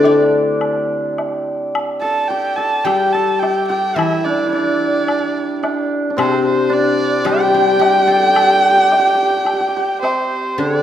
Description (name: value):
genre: chinese traditional, Chinese chamber ensemble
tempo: 108 BPM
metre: 4/4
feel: rubato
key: G zhi mode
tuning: A4 = 436 Hz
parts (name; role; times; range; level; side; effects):
- warm erhu; melody; 0.0-10.8 s; C5 to A5; -16 LUFS; right 1 dB; none
- hammered dulcimer; second line; 0.0-10.8 s; C4 to A4; -18 LUFS; right 2 dB; none
- guzheng; accompaniment; 0.0-10.8 s; C3 to D5; -18 LUFS; left 5 dB; none
- woodblock; percussion; 0.0-10.2 s; none; -26 LUFS; left 2 dB; none
room: wet recital hall reverb, RT60 1.6 s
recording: none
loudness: -13 LUFS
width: side -10 dB against mid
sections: 0.0-10.6 A section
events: none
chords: none